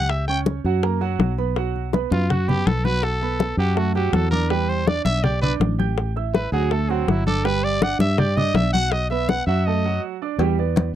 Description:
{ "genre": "latin, salsa", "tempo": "163 BPM", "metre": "4/4", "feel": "straight", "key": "E minor", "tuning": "A4 = 441 Hz", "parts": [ { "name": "growling trumpet", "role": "melody", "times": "0.0-10.0 s", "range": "C4 to G5", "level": "-24 LUFS", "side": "left 1 dB", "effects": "none" }, { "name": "clear grand piano", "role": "accompaniment", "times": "0.0-10.9 s", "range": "F#3 to G6", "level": "-26 LUFS", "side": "right 14 dB", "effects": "none" }, { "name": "fingered electric bass", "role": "bass", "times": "0.0-10.9 s", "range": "G1 to G2", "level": "-22 LUFS", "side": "equal", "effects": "none" }, { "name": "bongos and cowbell", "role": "percussion", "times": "0.1-10.9 s", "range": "none", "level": "-26 LUFS", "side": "left 9 dB", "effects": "none" }, { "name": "congas", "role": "percussion", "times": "0.1-10.9 s", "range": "none", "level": "-24 LUFS", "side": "left 3 dB", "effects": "none" } ], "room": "little or no reverb", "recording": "dry, close 1970s-style studio recording", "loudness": "-19 LUFS", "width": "side -11 dB against mid", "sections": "0.0-10.4 A section", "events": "trumpet solo 0.0-10.4; stop 9.7-10.4", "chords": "0.1 Em69/C#; 0.8 F#; 1.6 B5; 4.5 Em7; 6.0 A5; 6.7 D; 7.4 G; 8.9 B7; 10.4 Em7", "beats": "| 0.10 0.47 0.83 1.20 | 1.57 1.94 2.30 2.67 | 3.04 3.40 3.77 4.14 | 4.50 4.87 5.24 5.61 | 5.98 6.34 6.71 7.08 | 7.45 7.82 8.18 8.55 | 8.92 9.29 9.66 10.03 | 10.39 10.76" }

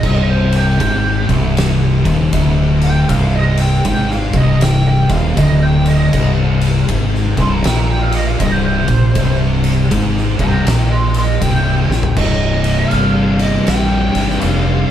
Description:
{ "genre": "stoner and doom metal", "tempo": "79 BPM", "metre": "4/4", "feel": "swing 64% on 8ths", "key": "C minor", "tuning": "A4 = 439 Hz", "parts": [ { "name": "fuzz lead guitar", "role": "melody", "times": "0.0-14.9 s", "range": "G4 to C6", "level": "-21 LUFS", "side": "right 2 dB", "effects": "wah, distortion" }, { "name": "sludgy distorted guitar", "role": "riff", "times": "0.0-14.9 s", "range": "C2 to C3", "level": "-23 LUFS", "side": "equal", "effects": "overdrive" }, { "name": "thick fuzz guitar", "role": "riff", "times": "0.0-14.9 s", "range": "C2 to C3", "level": "-17 LUFS", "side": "left 5 dB", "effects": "distortion" }, { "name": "thick fuzz guitar", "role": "riff", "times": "0.0-14.9 s", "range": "C2 to C3", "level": "-19 LUFS", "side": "right 4 dB", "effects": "distortion" }, { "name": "growling fingered electric bass", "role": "bass", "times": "0.0-14.8 s", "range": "C1 to Bb1", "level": "-18 LUFS", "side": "equal", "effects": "overdrive" }, { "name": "oversized low-tuned drum kit", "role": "drums", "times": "0.0-14.6 s", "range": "crash cymbal, kick drum, ride cymbal, snare drum, toms", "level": "-20 LUFS", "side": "equal", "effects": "none" } ], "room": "moderate stone room reverb, RT60 1.2 s", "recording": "band playing live in one room", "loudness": "-12 LUFS", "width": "side -10 dB against mid", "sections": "0.0-12.2 A section; 12.2-14.9 B section", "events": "lead electric guitar solo 0.0-12.2; drum fill 11.8-12.2", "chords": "0.0 Cm", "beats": "| 0.03 0.80 1.56 2.33 | 3.09 3.85 4.61 5.37 | 6.13 6.89 7.65 8.40 | 9.16 9.91 10.67 11.42 | 12.17 12.92 13.68 14.43" }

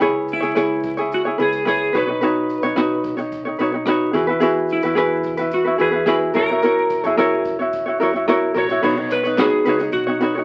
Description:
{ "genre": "acoustic pop", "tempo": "109 BPM", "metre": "4/4", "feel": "straight", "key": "B major", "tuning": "A4 = 440 Hz", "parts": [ { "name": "ukulele", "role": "accompaniment", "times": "0.0-10.4 s", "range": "D#4 to C#5", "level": "-20 LUFS", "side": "equal", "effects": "none" }, { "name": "vintage muted fingered electric bass", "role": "bass", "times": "0.0-10.4 s", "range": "A#1 to F#2", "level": "-40 LUFS", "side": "equal", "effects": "none" }, { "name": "jazz brush drum kit", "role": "drums", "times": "0.0-10.3 s", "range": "crash cymbal, kick drum, rim click, shaker, snare drum", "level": "-32 LUFS", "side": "equal", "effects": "none" }, { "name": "electric slide guitar", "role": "melody", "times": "0.3-10.4 s", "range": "E4 to C#5", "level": "-24 LUFS", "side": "equal", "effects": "none" }, { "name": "felt-muted upright piano", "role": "accompaniment", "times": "8.8-10.4 s", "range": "B3 to C#5", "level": "-32 LUFS", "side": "equal", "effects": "none" }, { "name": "group handclap", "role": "percussion", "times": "9.1-9.5 s", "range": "none", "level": "-38 LUFS", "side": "equal", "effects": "none" } ], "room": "moderate club reverb, RT60 0.9 s", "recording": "very old 78 rpm record, vinyl crackle", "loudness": "-19 LUFS", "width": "mono", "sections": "0.0-8.8 A section; 8.8-10.4 B section", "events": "none", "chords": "0.0 C#m7; 1.9 Badd9; 4.2 Eadd9; 6.4 F#7; 8.8 Badd9", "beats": "| 0.01 0.57 1.12 1.67 | 2.23 2.78 3.33 3.88 | 4.43 4.98 5.53 6.08 | 6.63 7.18 7.74 8.29 | 8.84 9.39 9.94" }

